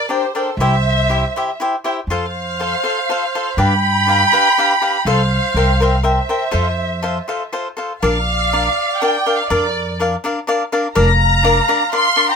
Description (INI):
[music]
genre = mexican folk, mariachi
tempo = 122 BPM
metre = 3/4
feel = rubato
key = F major, Bb major from 8.0 s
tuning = A4 = 439 Hz
[part]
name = dark symphonic violin section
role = melody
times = 0.0-12.4 s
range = C5 to C6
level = -17 LUFS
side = equal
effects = none
[part]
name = warm trumpet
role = second line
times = 0.0-12.4 s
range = G4 to G5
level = -23 LUFS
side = right 4 dB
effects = none
[part]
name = cavaquinho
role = accompaniment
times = 0.1-12.3 s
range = D4 to G5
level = -19 LUFS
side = left 2 dB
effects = none
[part]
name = upright bass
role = bass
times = 0.6-11.6 s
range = F1 to G2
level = -18 LUFS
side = equal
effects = none
[sound]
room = light reverb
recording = minimal, uncompressed stereo recording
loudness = -14 LUFS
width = side -6 dB against mid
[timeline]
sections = 0.0-8.0 A section; 8.0-12.4 B section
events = none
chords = 0.0 Gm; 0.6 C; 2.1 F; 3.6 G7; 5.1 F/C; 5.5 C7; 6.5 F; 8.0 Bb; 11.0 Bb/F